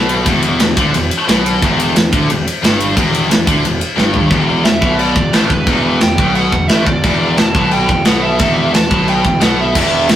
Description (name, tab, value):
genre	heavy metal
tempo	177 BPM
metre	4/4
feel	straight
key	E minor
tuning	A4 = 441 Hz
part	heavy high-gain guitar	riff	0.0-10.2 s	E2 to D3	-20 LUFS	right 4 dB	distortion
part	scooped high-gain guitar	riff	0.0-10.2 s	E2 to D3	-17 LUFS	left 3 dB	distortion
part	fuzz picked electric bass	bass	0.0-10.2 s	E1 to D2	-20 LUFS	equal	overdrive
part	tight metal drum kit	drums	0.1-10.2 s	china cymbal, crash cymbal, kick drum, ride cymbal, snare drum, toms	-14 LUFS	equal	none
part	high-gain lead guitar	melody	4.6-10.1 s	B4 to A5	-18 LUFS	right 3 dB	distortion
room	moderate small room reverb, RT60 0.5 s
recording	rough rehearsal-room recording, warm saturation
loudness	-11 LUFS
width	side -11 dB against mid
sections	0.0-4.3 A section; 4.3-10.2 B section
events	drum fill 4.0-4.3; lead electric guitar solo 4.3-10.2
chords	0.0 Em; 4.3 E5